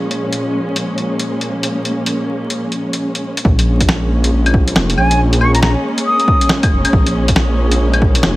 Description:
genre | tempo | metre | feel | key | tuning
future garage | 138 BPM | 4/4 | swing 63% on 16ths | Bb minor | A4 = 440 Hz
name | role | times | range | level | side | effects
muted studio string section | sustained chords | 0.0-8.4 s | Bb2 to Db4 | -19 LUFS | equal | sidechain pumping
lo-fi sampler-style drum kit | drums | 0.1-8.3 s | claves, hi-hat, snare drum | -18 LUFS | left 1 dB | studio reverb
electronic kick drum | drums | 3.4-8.1 s | none | -15 LUFS | equal | overdrive, studio reverb
swelling detuned saw bass | bass | 3.5-8.4 s | F1 to Bb1 | -15 LUFS | equal | sidechain pumping
silver concert flute | melody | 5.0-6.5 s | Ab5 to Eb6 | -18 LUFS | equal | digital delay
room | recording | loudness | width
digital ambience | vinyl crackle | -13 LUFS | side -18 dB against mid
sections
0.0-3.5 A section; 3.5-8.4 B section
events
none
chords
0.0 Bbm7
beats
0.41 0.84 1.28 | 1.71 2.15 2.58 3.02 | 3.45 3.89 4.32 4.76 | 5.19 5.63 6.06 6.50 | 6.93 7.37 7.80 8.23

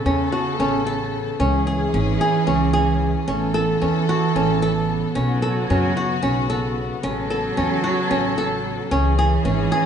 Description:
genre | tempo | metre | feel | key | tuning
contemporary instrumental, chamber music in an uneven meter | 224 BPM (eighths) | 7/8 | straight | A major | A4 = 437 Hz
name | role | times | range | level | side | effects
dark cello | second line | 0.0-9.9 s | C#3 to F#3 | -24 LUFS | right 7 dB | none
dark studio string section | sustained chords | 0.0-9.9 s | C#3 to A4 | -26 LUFS | left 4 dB | none
flamenco guitar | arpeggios | 0.1-9.9 s | C#4 to A4 | -22 LUFS | equal | none
upright bass | bass | 0.1-9.7 s | G#1 to F#2 | -24 LUFS | left 1 dB | none
room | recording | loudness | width
moderate scoring stage reverb, RT60 1.9 s | nothing above 10.4 kHz | -18 LUFS | side -8 dB against mid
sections
0.0-9.9 A section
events
none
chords
0.0 Aadd9; 1.4 C#m; 3.3 Aadd9; 5.2 Bsus2; 7.0 Aadd9; 8.9 C#m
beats
0.06 0.33 0.59 0.86 1.13 | 1.40 1.67 1.94 2.21 2.48 2.75 3.01 | 3.28 3.55 3.82 4.09 4.36 4.62 4.89 | 5.16 5.43 5.70 5.97 6.23 6.50 6.77 | 7.04 7.31 7.58 7.84 8.11 8.38 8.65 | 8.91 9.18 9.45 9.72

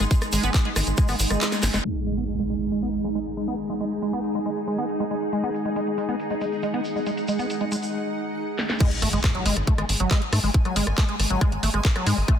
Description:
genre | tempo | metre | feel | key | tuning
psychedelic trance | 138 BPM | 4/4 | straight | unclear | A4 = 440 Hz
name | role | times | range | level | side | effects
overtone-sweeping drone | sustained chords | 0.0-12.4 s | G#3 | -31 LUFS | right 2 dB | chorus, built-in reverb, sidechain pumping
liquid acid bass | riff | 0.0-12.4 s | F#3 to B3 | -28 LUFS | equal | chorus, auto-pan, cassette tape, sidechain pumping, ping-pong delay
tight sequencer bass | bass | 0.0-1.8, 9.0-12.2 s | F#1 to G#2 | -24 LUFS | equal | none
garage drum kit | drums | 0.0-12.4 s | crash cymbal, handclaps, hi-hat, rim click, snare drum | -28 LUFS | equal | low-pass filter on hats, low-pass filter on snare, low-pass filter on cymbals, low-pass filter on room
tube shaker | percussion | 0.0-1.8, 5.3-7.9 s | none | -35 LUFS | right 1 dB | none
granular cloud pad | texture | 0.0-12.4 s | D#4 to G#5 | -31 LUFS | equal | built-in reverb, sidechain pumping
electronic kick drum | drums | 0.1-1.1, 8.8-12.4 s | none | -20 LUFS | equal | none
impact | sound effects | 1.8-3.6, 8.9-10.5 s | none | -33 LUFS | equal | none
room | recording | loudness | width
moderate lush hall reverb, RT60 1.8 s, digital ambience | dense, heavily limited modern master, low-pass filter | -22 LUFS | side -9 dB against mid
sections
0.0-1.8 A section; 1.8-8.8 B section; 8.8-12.4 A section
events
drop 0.0-1.8, 8.8-12.4; kick drops out 1.4-1.8; drum fill 1.5-1.8, 8.6; band accent 1.7; impact 1.8-3.6, 8.8-10.5; filter sweep on acid bass 1.8-8.8; filter sweep on synth drone 1.8-8.8; filter sweep 1.8-8.8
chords
0.0 G#5; 8.8 F#sus2/G#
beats
| 0.11 0.54 0.98 1.41 | 1.85 2.28 2.72 3.15 | 3.59 4.02 4.46 4.89 | 5.33 5.76 6.20 6.63 | 7.07 7.50 7.93 8.37 | 8.80 9.24 9.67 10.11 | 10.54 10.98 11.41 11.85 | 12.28

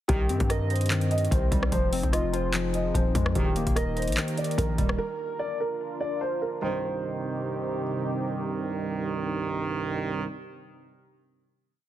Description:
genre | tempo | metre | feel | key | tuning
hip hop, trap | 147 BPM | 4/4 | half-time | C minor | A4 = 439 Hz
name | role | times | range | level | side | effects
dark concert grand piano | melody | 0.1-7.8 s | G4 to Eb5 | -31 LUFS | right 1 dB | low-pass filter, ping-pong delay
warbly lo-fi synth keys | accompaniment | 0.1-5.0 s | Eb3 to Eb5 | -30 LUFS | left 1 dB | chorus, low-pass filter
dark analog pad | sustained chords | 0.7-10.2 s | C3 to Bb4 | -35 LUFS | equal | chorus
bright brass ensemble | stabs | 0.1-0.4, 3.4-3.7, 6.6-10.2 s | Bb1 to Eb3 | -31 LUFS | right 4 dB | none
hard-hitting 808-style bass | bass | 0.1-5.0 s | Eb1 to G2 | -28 LUFS | equal | none
booming analog drum machine | drums | 0.1-5.0 s | handclaps, hi-hat, kick drum, rim click | -27 LUFS | equal | none
room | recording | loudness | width
little or no reverb | heavily compressed radio sound, multiband compression | -25 LUFS | side -12 dB against mid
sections
0.1-6.6 hook; 6.6-9.9 final chord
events
none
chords
0.1 Cm; 1.7 Fm7; 3.4 Eb; 5.0 Bb; 6.6 Cm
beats
| 0.09 0.50 0.91 1.31 | 1.72 2.13 2.54 2.95 | 3.35 3.76 4.17 4.58 | 4.99 5.39 5.80 6.21 | 6.62 7.03 7.44 7.84 | 8.25 8.66 9.07 9.48

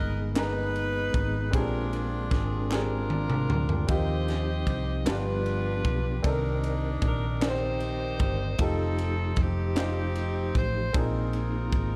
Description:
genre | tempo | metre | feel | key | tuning
slow gospel | 51 BPM (dotted quarters) | 6/8 | straight | unclear | A4 = 440 Hz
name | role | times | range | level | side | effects
edgy saxophone section | melody | 0.0-12.0 s | C4 to Eb5 | -36 LUFS | equal | slapback echo
warm baby grand piano | accompaniment | 0.0-12.0 s | G2 to Bb5 | -37 LUFS | equal | none
mellow tonewheel organ | sustained chords | 0.0-12.0 s | Eb3 to D5 | -38 LUFS | equal | fast rotary speaker, chorus vibrato
hollow-body short-scale fingered electric bass | bass | 0.0-12.0 s | F1 to Eb2 | -32 LUFS | equal | none
crisp fusion drum kit | drums | 0.4-11.9 s | kick drum, ride cymbal, snare drum, toms | -33 LUFS | equal | none
group handclap | percussion | 0.4-10.1 s | none | -43 LUFS | equal | none
room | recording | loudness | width
light reverb, small room ambience | dark, warm production | -28 LUFS | mono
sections
0.0-12.0 A section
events
drum fill 2.7-3.9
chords
0.0 Abmadd9; 1.5 Bb13; 3.9 Eb69; 5.1 G7; 6.2 Cm9; 8.6 F9; 10.9 Bb9sus4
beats
0.35 | 1.53 2.71 | 3.89 5.07 | 6.24 7.42 | 8.60 9.77 | 10.95

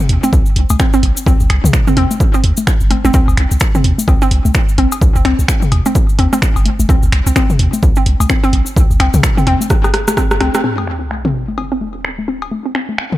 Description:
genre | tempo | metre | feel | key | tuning
minimal techno | 128 BPM | 4/4 | swing 60% on 16ths | C minor | A4 = 440 Hz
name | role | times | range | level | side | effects
cabasa | percussion | 0.0-10.6 s | none | -25 LUFS | left 4 dB | none
electronic toms, congas and cowbell | percussion | 0.0-13.2 s | none | -20 LUFS | left 3 dB | digital delay
punchy sub bass | bass | 0.1-12.9 s | G1 to Eb2 | -14 LUFS | equal | sidechain pumping, high-pass filter
punchy analog drum machine | drums | 0.1-13.1 s | finger snaps, hi-hat, rim click | -20 LUFS | right 1 dB | low-pass filter on snare, low-pass filter on hats, low-pass filter on room
hollow square pluck | riff | 0.2-12.8 s | C4 | -19 LUFS | right 1 dB | chorus, sidechain pumping, digital delay
electronic kick drum | drums | 0.3-10.3 s | none | -14 LUFS | equal | none
sub drop | sound effects | 10.6-12.5 s | none | -25 LUFS | equal | none
room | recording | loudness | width
digital ambience | none | -11 LUFS | side -15 dB against mid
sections
0.0-10.6 A section; 10.6-13.2 B section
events
drop 0.0-10.6; drum fill 9.7-10.6; band accent 10.5; impact 10.6-12.5; filter sweep on drum 10.6-13.2; filter sweep on synth arpeggio sound 10.6-13.2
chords
0.0 C5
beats
0.33 0.80 | 1.26 1.73 2.20 2.67 | 3.14 3.61 4.08 4.55 | 5.01 5.48 5.95 6.42 | 6.89 7.36 7.83 8.30 | 8.77 9.23 9.70 10.17 | 10.64 11.11 11.58 12.05 | 12.52 12.98

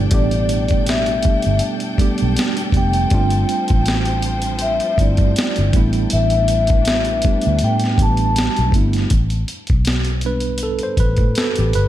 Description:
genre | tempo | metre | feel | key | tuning
R&B, neo-soul | 80 BPM | 4/4 | swing 54% on 16ths | A minor | A4 = 440 Hz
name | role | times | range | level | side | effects
mellow tine electric piano | accompaniment | 0.0-11.9 s | B2 to C5 | -22 LUFS | right 4 dB | medium stereo tremolo
warm studio string section | sustained chords | 0.0-9.1 s | F3 to G5 | -31 LUFS | left 3 dB | none
vintage muted fingered electric bass | bass | 0.0-11.9 s | F1 to A2 | -19 LUFS | equal | none
vibraphone with soft mallets | melody | 0.1-8.7 s | D5 to A5 | -21 LUFS | left 3 dB | none
boom bap sampler-style drum kit | drums | 0.1-11.9 s | hi-hat, kick drum, snare drum | -19 LUFS | equal | none
room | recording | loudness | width
light reverb, digital ambience | none | -15 LUFS | side -13 dB against mid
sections
0.0-9.1 A section; 9.1-11.9 B section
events
tine electric piano solo 9.1-11.9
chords
0.0 A9sus4; 3.1 G9sus4; 5.7 A9sus4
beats
| 0.11 0.86 1.61 2.36 | 3.11 3.86 4.61 5.36 | 6.11 6.86 7.61 8.36 | 9.11 9.86 10.61 11.36

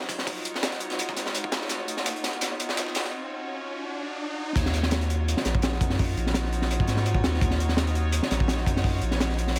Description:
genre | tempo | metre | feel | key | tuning
drum and bass, jungle | 168 BPM | 4/4 | straight | Eb minor | A4 = 439 Hz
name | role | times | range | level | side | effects
clear studio string section | sustained chords | 0.0-9.6 s | Eb4 to Db5 | -36 LUFS | equal | low-pass filter
crunchy breakbeat drum kit | drums | 0.0-9.6 s | crash cymbal, hi-hat, kick drum, snare drum | -29 LUFS | equal | high-pass filter on kick, high-pass filter on hats, high-pass filter on cymbals, high-pass filter on snare, high-pass filter on room
dusty soul sampler-style drum kit | drums | 0.0-3.1 s | hi-hat, snare drum, tambourine | -37 LUFS | equal | high-pass filter on perc, high-pass filter on snare, high-pass filter on hats
riser | sound effects | 1.1-4.6 s | none | -40 LUFS | equal | none
saturated sub bass | bass | 4.6-9.6 s | Bb1 to Ab2 | -28 LUFS | equal | none
room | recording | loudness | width
light reverb, studio reverb | high-pass filter | -27 LUFS | mono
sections
0.0-4.6 A section; 4.6-9.6 B section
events
build-up 0.0-4.6; riser 1.1-4.6; drum fill 1.7-3.1; break 3.1-4.6; drop 4.6-9.6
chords
0.0 Ebm9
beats
| 0.27 0.63 0.99 1.34 | 1.70 2.06 2.42 2.77 | 3.13 3.49 3.85 4.20 | 4.56 4.92 5.27 5.63 | 5.99 6.34 6.70 7.06 | 7.42 7.77 8.13 8.49 | 8.85 9.20 9.56

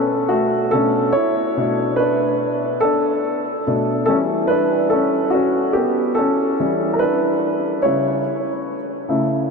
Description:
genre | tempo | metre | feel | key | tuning
pop | 48 BPM (dotted quarters) | 6/8 | straight | unclear | A4 = 439 Hz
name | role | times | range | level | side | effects
warm baby grand piano | solo | 0.0-9.5 s | B2 to C#5 | -16 LUFS | equal | none
room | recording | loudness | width
wet huge ambient reverb, RT60 7.2 s | dreamy mix soaked in reverb | -16 LUFS | side -4 dB against mid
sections
0.0-9.5 A section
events
grand piano solo 0.0-9.5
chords
0.0 Bm7; 4.1 C#dim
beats
0.32 | 1.57 2.83 | 4.08 5.34 | 6.59 7.84 | 9.10

